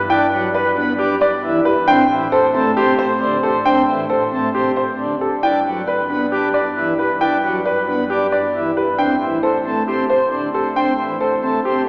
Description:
classical, minimalist pattern music; 135 BPM; 4/4; straight; A4 = 440 Hz
bright concert grand piano; melody; 0.0-11.9 s; G4 to G5; -22 LUFS; equal
warm oboe; second line; 0.0-11.8 s; B4 to C5; -27 LUFS; equal
folk marimba with soft mallets; arpeggios; 0.0-11.7 s; C4 to D5; -24 LUFS; equal
rich studio double bass section; bass; 0.0-11.9 s; G2 to A2; -36 LUFS; equal
pipe organ, principal chorus; accompaniment; 0.1-11.8 s; D3 to D4; -23 LUFS; equal
wet cathedral reverb, RT60 4.5 s; recorded in a church or concert hall, small speaker sound, faint mains hum; -18 LUFS; mono
0.0-11.9 A section
0.0 Gmaj7; 1.9 Am7; 5.4 Gmaj7; 9.0 Am7

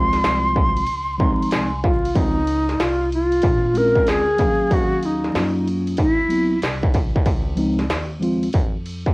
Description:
hip hop, jazz-hop; 94 BPM; 4/4; swing 66% on 16ths; Db major; A4 = 440 Hz
breathy mellow silver concert flute; melody; 0.0-6.6 s; Eb4 to C6; -20 LUFS; equal; cassette tape, analog delay
mellow tine electric piano; accompaniment; 0.0-8.5 s; F3 to Bb5; -23 LUFS; equal; slow stereo tremolo, cassette tape
upright bass; bass; 0.0-9.1 s; Bb1 to Gb2; -27 LUFS; equal
industrial drum kit; drums; 0.1-9.1 s; hi-hat, kick drum, ride cymbal, snare drum; -21 LUFS; equal; distortion, vintage 12-bit sampler grit, cassette tape
moderate studio reverb, RT60 0.6 s; home recording on cassette, vinyl crackle; -17 LUFS; side -25 dB against mid
0.0-2.2 A section; 2.2-9.1 B section
tine electric piano fill 0.9-2.2
0.0 Dbmaj7; 3.4 Bbm7; 4.7 Ebm7; 6.0 D13; 7.3 Dbmaj7

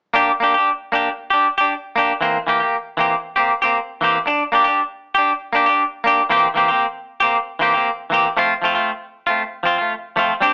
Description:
highlife; 117 BPM; 4/4; straight; G minor; A4 = 439 Hz
clean electric guitar; solo; 0.1-10.5 s; E3 to G4; -15 LUFS; equal
moderate studio reverb, RT60 0.9 s; band playing live in one room, small speaker sound; -15 LUFS; side -28 dB against mid
0.1-4.3 A section; 4.3-10.5 B section
0.1 Gm; 2.2 C7; 4.3 Gm; 6.3 C7; 8.4 F

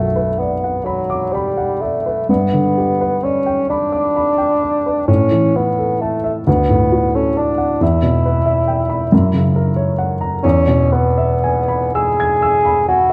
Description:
classical, romantic duo for bassoon and grand piano; 38-47 BPM (dotted quarters); 6/8; rubato; B minor; A4 = 440 Hz
mellow bassoon; melody; 0.0-13.1 s; F#3 to G#4; -19 LUFS; equal
warm baby grand piano; accompaniment; 0.0-13.1 s; B1 to G#6; -19 LUFS; equal
moderate recital hall reverb, RT60 1.4 s; close, detailed microphones; -16 LUFS; mono
0.0-13.1 A section
0.0 Bm; 2.3 G; 5.1 A5; 6.5 D; 7.8 Em; 9.1 F#7; 10.4 E

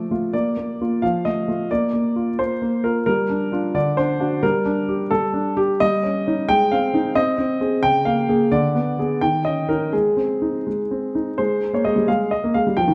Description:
classical-period piano sonatina; 87 BPM (dotted quarters); 6/8; rubato; Bb major, Ab major from 5.8 s; A4 = 440 Hz
clear grand piano; solo; 0.0-12.9 s; Db3 to G5; -20 LUFS; equal
moderate recital hall reverb, RT60 1.6 s; dark, warm production, nothing above 10.3 kHz; -21 LUFS; mono
0.3-11.4 A section; 11.4-12.9 B section
0.3 Bb; 1.0 F7; 1.7 Bb; 3.1 Gm7; 3.8 D7; 4.4 Gm; 5.8 Eb7/G; 6.5 Ab; 7.1 Ab/C; 7.8 Bbm7/Db; 8.5 Abdim/D; 9.2 Eb7; 9.9 Ab; 11.4 Abmaj13

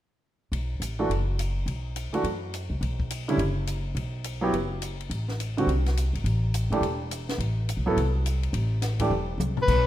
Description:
modal jazz; 210 BPM; 4/4; swing 62% on 8ths; B phrygian; A4 = 440 Hz
upright bass; bass; 0.5-9.9 s; E1 to F#2; -27 LUFS; equal
compact cocktail drum kit; drums; 0.5-9.8 s; crash cymbal, hi-hat, kick drum, ride cymbal, snare drum, toms; -35 LUFS; left 2 dB
warm baby grand piano; accompaniment; 1.0-9.1 s; D3 to A4; -27 LUFS; right 2 dB
warm soprano saxophone; melody; 9.6-9.9 s; B4; -21 LUFS; left 4 dB
light reverb; minimal, uncompressed stereo recording; -25 LUFS; side -13 dB against mid
0.5-9.7 A section
drum fill 9.1-9.7
0.5 B5; 5.1 Am

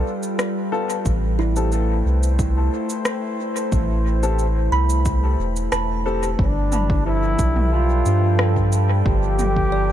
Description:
ambient dub; 90 BPM; 4/4; straight; A4 = 439 Hz
warbly tape-like pad; sustained chords; 0.0-9.9 s; F3 to G5; -26 LUFS; left 1 dB; chorus, built-in reverb
kalimba; arpeggios; 0.0-9.9 s; G3 to B5; -30 LUFS; right 5 dB; dub echo
soft dub sub bass; bass; 0.0-9.9 s; E1 to G2; -19 LUFS; equal
organic electronic drum kit; drums; 0.2-9.5 s; cabasa, rim click, toms; -28 LUFS; equal; overdrive, dub echo
dark upright piano; stabs; 0.7-6.3 s; B3 to A4; -30 LUFS; left 4 dB; dub echo
electronic kick drum; drums; 1.1-9.7 s; -22 LUFS; equal; overdrive
mellow trombone; melody; 6.4-9.9 s; D4 to G4; -23 LUFS; equal; dub echo
little or no reverb; -18 LUFS; side -11 dB against mid
0.0-6.4 A section; 6.4-9.9 B section
0.0 G9; 1.1 Am7; 6.4 G9

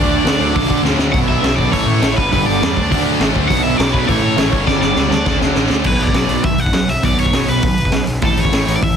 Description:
punk rock; 204 BPM; 4/4; straight; B minor; A4 = 440 Hz
cranked stack guitar; melody; 0.0-9.0 s; A4 to F#5; -20 LUFS; equal; overdrive, digital delay
distorted electric guitar; riff; 0.0-8.9 s; G2 to D4; -20 LUFS; right 13 dB; distortion
distorted electric guitar; riff; 0.0-5.9 s; G2 to D4; -23 LUFS; equal; overdrive
sludgy distorted guitar; riff; 0.0-9.0 s; G2 to E4; -21 LUFS; left 13 dB; overdrive
fuzz picked electric bass; bass; 0.0-8.9 s; G1 to D3; -21 LUFS; equal; overdrive
raw garage drum kit; drums; 0.3-8.9 s; crash cymbal, hi-hat, kick drum, snare drum; -18 LUFS; equal
little or no reverb; dense, heavily limited modern master; -13 LUFS; side -7 dB against mid
0.0-1.1 A section; 1.1-5.8 B section; 5.8-9.0 C section
drum fill 0.8, 4.7-5.8
0.0 D; 1.1 Bm; 1.7 A; 2.2 G; 2.8 D; 3.5 Bm; 4.1 A; 4.5 G; 5.1 D; 5.8 Bm; 8.2 A

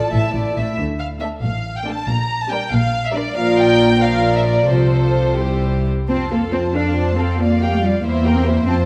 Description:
quick classical-period movement for string orchestra; 85-95 BPM (dotted quarters); 6/8; rubato; F major from 3.4 s; A4 = 441 Hz
dark studio violin section; melody; 0.0-8.9 s; C5 to Bb5; -26 LUFS; equal
warm studio violin section; second line; 0.0-8.9 s; G4 to F5; -26 LUFS; equal
dark studio viola section; accompaniment; 0.0-8.9 s; F3 to A4; -25 LUFS; equal
rich studio cello section; bass; 0.1-8.7 s; A2 to D4; -23 LUFS; equal
rich studio double bass section; bass; 0.1-8.9 s; A1 to F2; -24 LUFS; equal
moderate scoring stage reverb, RT60 1.8 s; -18 LUFS; mono
0.0-6.1 A section; 6.1-8.9 B section
0.1 A5; 0.8 D5; 2.1 Gm/Bb; 3.4 Bb; 4.7 F/C; 5.4 C; 6.1 F; 7.4 Gm7/F; 8.0 C7/E

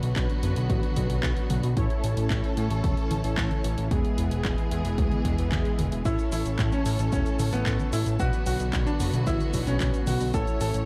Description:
italo disco; 112 BPM; 4/4; straight; A major; A4 = 440 Hz
warm studio string section; sustained chords; 0.0-10.9 s; D3 to C#5; -36 LUFS; equal
analog synth brass; stabs; 0.0-10.9 s; D3 to C#5; -36 LUFS; equal; chorus, cassette tape
fat analog bass; bass; 0.0-10.9 s; D1 to A2; -30 LUFS; equal; tube saturation
house drum kit; drums; 0.0-10.8 s; cabasa, handclaps, hi-hat, toms; -37 LUFS; equal
electronic kick drum; drums; 0.2-10.4 s; -31 LUFS; equal
bright grand piano; melody; 6.1-10.9 s; B3 to A4; -33 LUFS; equal; delay
little or no reverb; vinyl crackle; -26 LUFS; mono
0.0-10.9 A section
0.0 Bm; 1.8 A; 3.9 E; 6.1 A; 8.2 Bm; 10.3 A

